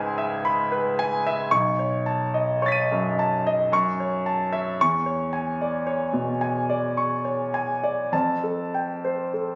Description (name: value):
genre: classical, impressionist solo piano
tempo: 49-58 BPM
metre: 3/4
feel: rubato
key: unclear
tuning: A4 = 440 Hz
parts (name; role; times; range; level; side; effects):
- clear grand piano; solo; 0.0-9.6 s; B1 to D#7; -24 LUFS; equal; none
room: light reverb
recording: recorded on a phone in the room, studio reverb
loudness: -24 LUFS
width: mono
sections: 0.0-9.6 A section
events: none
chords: 0.0 C#m7; 1.5 B9; 3.7 F#m7; 4.8 E6; 8.1 Fadd9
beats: 0.45 | 1.52 2.61 3.70 | 4.77 5.84 6.95 | 8.13 9.33